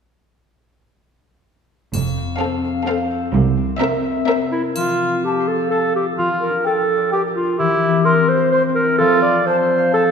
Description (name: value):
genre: cinematic, playful, whimsical film cue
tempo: 128 BPM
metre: 3/4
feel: straight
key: F major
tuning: A4 = 440 Hz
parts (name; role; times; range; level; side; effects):
- concert harp; arpeggios; 1.9-10.1 s; F2 to F5; -21 LUFS; left 6 dB; none
- rich studio cello section; bass; 1.9-3.7 s; C2 to F2; -22 LUFS; right 5 dB; none
- rich studio double bass section; bass; 1.9-3.7 s; F1 to C2; -23 LUFS; right 6 dB; none
- triangle; percussion; 1.9-5.7 s; none; -35 LUFS; left 4 dB; none
- clear studio violin section; melody; 2.4-4.6 s; E5 to F5; -28 LUFS; left 1 dB; none
- warm studio violin section; second line; 2.4-4.6 s; A4 to Bb4; -25 LUFS; left 2 dB; none
- rich studio viola section; accompaniment; 2.4-4.6 s; C4; -27 LUFS; right 1 dB; none
- mellow clarinet; second line; 4.5-10.1 s; E4 to D5; -17 LUFS; right 1 dB; none
- mellow cor anglais; second line; 4.8-9.4 s; E4 to F4; -22 LUFS; right 3 dB; none
- large flute ensemble; second line; 5.3-10.0 s; G5 to C6; -26 LUFS; left 1 dB; none
room: wet concert hall reverb, RT60 2.0 s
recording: minimal, uncompressed stereo recording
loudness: -15 LUFS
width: side -6 dB against mid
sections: 1.9-4.8 A section; 4.8-10.1 B section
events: none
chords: 1.9 F; 3.3 C7; 4.8 F; 6.2 Gm7/F; 7.6 C/E; 9.0 F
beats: | 1.93 2.41 2.88 | 3.34 3.80 4.28 | 4.76 5.24 5.71 | 6.18 6.65 7.12 | 7.59 8.06 8.53 | 8.99 9.46 9.93